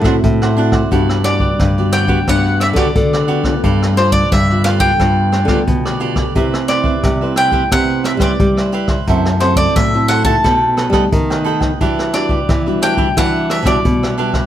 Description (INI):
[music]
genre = samba and choro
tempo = 88 BPM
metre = 4/4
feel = straight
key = unclear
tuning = A4 = 440 Hz
[part]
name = bowl-back mandolin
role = melody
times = 0.0-14.2 s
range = C5 to A5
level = -17 LUFS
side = equal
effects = none
[part]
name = cavaquinho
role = accompaniment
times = 0.0-14.5 s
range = D4 to G5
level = -22 LUFS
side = right 6 dB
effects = none
[part]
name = nylon-string guitar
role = accompaniment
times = 0.0-14.5 s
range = B2 to D5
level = -21 LUFS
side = equal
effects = none
[part]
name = nylon-string guitar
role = bass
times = 0.0-14.4 s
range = F#2 to G3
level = -16 LUFS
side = equal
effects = none
[part]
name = jazz brush drum kit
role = drums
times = 0.0-14.5 s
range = hi-hat, kick drum, rim click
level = -18 LUFS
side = equal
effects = none
[sound]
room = moderate studio reverb, RT60 1.0 s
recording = none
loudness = -12 LUFS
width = side -11 dB against mid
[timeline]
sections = 0.0-14.5 A section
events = none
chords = 0.0 D9; 0.9 Gmaj7; 3.6 G9; 6.4 Cmaj9; 9.1 F#m7b5; 10.4 Baug7; 11.8 Em9